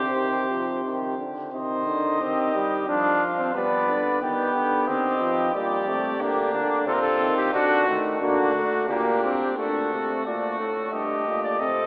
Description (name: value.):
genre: classical, imitative canzona for brass ensemble.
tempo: 89 BPM.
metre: 3/4.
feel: straight.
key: C minor.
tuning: A4 = 440 Hz.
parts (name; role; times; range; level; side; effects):
mellow trumpet; melody; 0.0-11.9 s; D4 to G5; -26 LUFS; left 1 dB; none.
clear flugelhorn; second line; 0.0-11.9 s; D4 to C5; -28 LUFS; equal; none.
bright trombone; accompaniment; 0.0-11.9 s; D3 to D4; -26 LUFS; equal; none.
clear euphonium; bass; 0.0-11.9 s; G2 to G3; -28 LUFS; equal; none.
room: wet church reverb, RT60 3.5 s.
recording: heard from further back in the room, small speaker sound.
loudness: -21 LUFS.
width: side -26 dB against mid.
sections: 0.0-1.5 A section; 1.5-9.6 B section; 9.6-11.9 A section.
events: none.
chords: 0.0 Cm; 2.9 Dm7/F; 3.5 G; 4.9 Cm/Eb; 5.5 Gm/Bb; 6.9 Adim/C; 7.5 D; 8.9 Gm/Bb; 9.6 D; 10.9 Eb/G.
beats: 0.14 0.83 | 1.53 2.20 2.88 | 3.55 4.21 4.87 | 5.54 6.21 6.87 | 7.54 8.22 8.90 | 9.58 10.26 10.93 | 11.60.